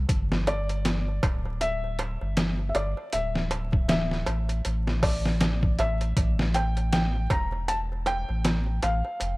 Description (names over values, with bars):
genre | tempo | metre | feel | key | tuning
trip hop | 79 BPM | 4/4 | swing 58% on 16ths | unclear | A4 = 440 Hz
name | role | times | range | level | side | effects
warm sub bass | bass | 0.0-9.4 s | D1 to A1 | -28 LUFS | equal | none
trip hop sampler-style drum kit | drums | 0.1-9.4 s | hi-hat, kick drum, snare drum | -26 LUFS | equal | overdrive
darbuka | percussion | 0.1-9.4 s | none | -36 LUFS | right 2 dB | none
felt-muted upright piano | melody | 0.5-9.4 s | D5 to Bb5 | -31 LUFS | left 1 dB | none
room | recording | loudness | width
little or no reverb | vinyl crackle | -24 LUFS | side -22 dB against mid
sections
0.0-9.4 A section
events
none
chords
0.1 G5; 3.1 Dsus2; 6.2 A5